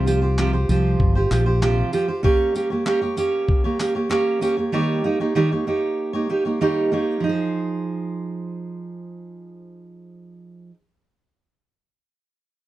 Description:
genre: acoustic pop.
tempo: 96 BPM.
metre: 4/4.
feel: straight.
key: F minor.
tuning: A4 = 440 Hz.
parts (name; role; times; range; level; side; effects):
fingerpicked steel-string acoustic guitar; accompaniment; 0.0-10.8 s; C3 to Db5; -21 LUFS; right 2 dB; none.
mellow fretless electric bass; bass; 0.0-1.8 s; G1 to C2; -19 LUFS; left 1 dB; none.
dusty soul sampler-style drum kit; drums; 0.1-4.6 s; handclaps, kick drum, tambourine; -23 LUFS; left 1 dB; none.
room: light reverb.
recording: dark, warm production.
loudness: -19 LUFS.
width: side -15 dB against mid.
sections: 0.0-7.2 A section; 7.2-9.7 B section.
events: none.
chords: 0.0 Csus4; 2.2 Gdim; 4.7 Eb7; 7.2 Fm7.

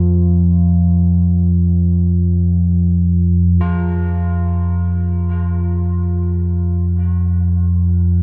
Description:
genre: dark ambient drone.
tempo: free time.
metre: none.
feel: none.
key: unclear.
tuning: A4 = 440 Hz.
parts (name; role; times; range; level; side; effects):
deep rumbling drone; drone; 0.0-8.2 s; F2 to F3; -15 LUFS; equal; built-in reverb.
bronze singing bowl; texture; 0.0-8.2 s; F4; -38 LUFS; equal; none.
carillon bells; arpeggios; 3.6-8.2 s; F4; -36 LUFS; equal; diffuse ambient delay.
room: moderate huge ambient reverb, RT60 7.2 s.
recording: worn, warbling old tape, cassette tape, warbly pitch drift.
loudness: -16 LUFS.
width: mono.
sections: 0.0-3.6 A section; 3.6-8.2 B section.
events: fade-in on singing bowl 3.6-8.2; fade-in on church bells 3.6-8.2.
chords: 0.0 N.C.; 3.6 Fm.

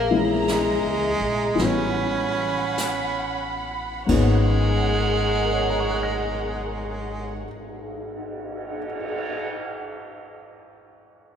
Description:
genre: jazz ballad.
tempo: 44-59 BPM.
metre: 4/4.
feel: swing 66% on 8ths.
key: G# minor.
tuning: A4 = 440 Hz.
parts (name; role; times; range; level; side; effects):
growling tenor saxophone; melody; 0.0-7.4 s; G#3 to C#4; -26 LUFS; right 2 dB; none.
dark studio string section; sustained chords; 0.0-7.4 s; G#4 to B5; -28 LUFS; equal; none.
upright bass; bass; 0.0-7.4 s; G#1 to C#2; -27 LUFS; equal; none.
dark baby grand piano; accompaniment; 0.1-11.4 s; G#2 to A#6; -26 LUFS; left 3 dB; none.
jazz brush drum kit; drums; 0.5-9.3 s; brushed snare drum, crash cymbal, cymbal swell, hi-hat, kick drum, snare drum; -33 LUFS; right 1 dB; none.
room: wet church reverb, RT60 3.7 s.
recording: recorded in a church or concert hall.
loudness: -21 LUFS.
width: side -8 dB against mid.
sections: 0.0-4.1 A section; 4.1-9.6 B section.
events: slowing down 0.0-4.1.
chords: 0.0 A#m7b5; 1.6 A13; 4.1 G#m11.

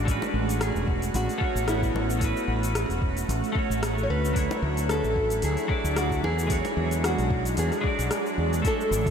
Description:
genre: sunset chillout.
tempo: 112 BPM.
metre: 4/4.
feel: swing 55% on 16ths.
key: A major.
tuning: A4 = 436 Hz.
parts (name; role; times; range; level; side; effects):
twelve-string electric guitar; accompaniment; 0.0-9.1 s; F#3 to D5; -30 LUFS; right 2 dB; auto-pan, ping-pong delay, shimmer reverb.
shimmering ambient pad; sustained chords; 0.0-9.1 s; C#3 to F#4; -32 LUFS; equal; chorus, built-in reverb, shimmer reverb.
mellow fretless electric bass; bass; 0.0-9.1 s; E1 to E2; -28 LUFS; equal; none.
deep house drum kit; drums; 0.1-9.1 s; hi-hat, rim click, shaker, toms; -34 LUFS; left 1 dB; overdrive.
electronic kick drum; drums; 0.1-9.1 s; none; -29 LUFS; equal; none.
bongos; percussion; 0.2-7.7 s; none; -41 LUFS; left 4 dB; none.
nylon-string guitar; melody; 0.6-9.1 s; E4 to C#5; -30 LUFS; equal; vintage 12-bit sampler grit, analog delay, shimmer reverb.
room: moderate huge ambient reverb, RT60 7.8 s.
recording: dreamy mix soaked in reverb.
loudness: -23 LUFS.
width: side -7 dB against mid.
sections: 0.0-8.6 A section.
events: none.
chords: 0.1 A69; 4.4 Dmaj9; 6.2 E13.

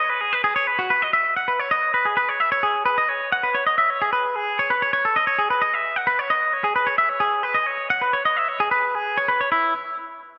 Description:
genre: rock.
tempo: 131 BPM.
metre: 5/4.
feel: straight.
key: E major.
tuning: A4 = 440 Hz.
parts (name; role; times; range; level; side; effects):
twangy electric guitar; solo; 0.0-9.7 s; E4 to F#5; -21 LUFS; equal; spring reverb, analog delay.
room: moderate studio reverb, RT60 0.6 s.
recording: none.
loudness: -21 LUFS.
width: mono.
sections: 0.3-9.5 A section.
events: none.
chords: none.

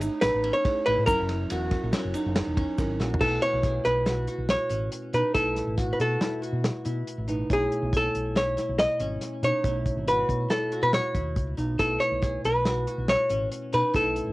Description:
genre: progressive instrumental, band music in an uneven meter.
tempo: 140 BPM.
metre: 5/4.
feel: straight.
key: B mixolydian.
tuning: A4 = 435 Hz.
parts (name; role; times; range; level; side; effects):
bell-like tine electric piano; accompaniment; 0.0-14.3 s; B2 to C#5; -34 LUFS; right 2 dB; plate reverb.
qanun; arpeggios; 0.0-14.3 s; C#4 to G#5; -34 LUFS; equal; tape echo.
fingered electric bass; bass; 0.0-14.3 s; E1 to B2; -30 LUFS; equal; none.
warm soul drum kit; drums; 0.0-14.3 s; crash cymbal, hi-hat, kick drum, ride cymbal, snare drum, toms; -29 LUFS; equal; cassette tape.
tube shaker; percussion; 0.0-2.9 s; none; -49 LUFS; left 4 dB; none.
archtop guitar, miked and amplified; melody; 0.2-14.3 s; G#4 to D#5; -25 LUFS; equal; cassette tape, plate reverb.
room: moderate booth ambience, RT60 0.2 s.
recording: home recording on cassette.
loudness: -23 LUFS.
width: side -20 dB against mid.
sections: 0.0-3.2 A section; 3.2-14.3 B section.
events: drum fill 3.0.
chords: 0.0 Amaj7; 1.1 F#7; 3.2 B7sus4; 7.5 Amaj7; 11.8 B7sus4.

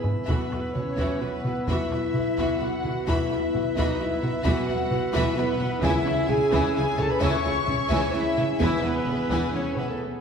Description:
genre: cinematic, epic orchestral film score.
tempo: 130 BPM.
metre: 3/4.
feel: straight.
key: unclear.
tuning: A4 = 441 Hz.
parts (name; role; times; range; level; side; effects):
rich symphonic violin section; melody; 0.0-10.0 s; A4 to C#6; -36 LUFS; left 2 dB; none.
small flute group; second line; 0.0-10.0 s; A4 to C#6; -34 LUFS; left 2 dB; none.
warm symphonic violin section; second line; 0.0-9.9 s; G#4 to B5; -34 LUFS; left 3 dB; none.
rich symphonic viola section; accompaniment; 0.0-9.9 s; E3 to F#4; -33 LUFS; right 1 dB; none.
mellow French horn section; sustained chords; 0.0-10.0 s; A3 to C#5; -28 LUFS; left 2 dB; none.
pipe organ, sparkling flutes; sustained chords; 0.0-10.0 s; B3 to E5; -32 LUFS; right 2 dB; none.
clear symphonic double bass section; bass; 0.0-9.8 s; E1 to C#2; -33 LUFS; right 2 dB; none.
rich symphonic cello section; bass; 0.0-9.8 s; E2 to C#3; -33 LUFS; right 2 dB; none.
taiko ensemble; drums; 0.0-10.0 s; none; -30 LUFS; equal; none.
timpani; percussion; 5.8-6.5 s; C#3; -34 LUFS; left 1 dB; none.
room: wet scoring stage reverb, RT60 1.8 s.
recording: heard from further back in the room.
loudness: -22 LUFS.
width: side -6 dB against mid.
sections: 0.3-10.2 A section.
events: drum fill 0.0; break 10.0.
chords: 0.3 Bsus4; 5.8 C#m; 8.6 E.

